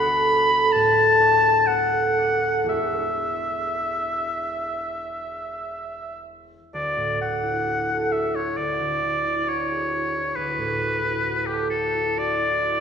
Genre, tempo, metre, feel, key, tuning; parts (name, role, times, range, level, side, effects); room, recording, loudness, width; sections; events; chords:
classical, impressionist duo for oboe and harp; 57-71 BPM; 4/4; rubato; D major; A4 = 440 Hz
clear oboe; melody; 0.0-12.8 s; G4 to B5; -22 LUFS; left 1 dB
concert harp; accompaniment; 0.0-12.8 s; E1 to B4; -25 LUFS; right 1 dB
wet concert hall reverb, RT60 1.9 s; recorded in a church or concert hall; -20 LUFS; side -7 dB against mid
0.0-6.7 A section; 6.7-12.8 B section
0.0 D6; 2.7 E9; 6.7 Dadd9; 8.6 E13/D; 10.4 Dadd9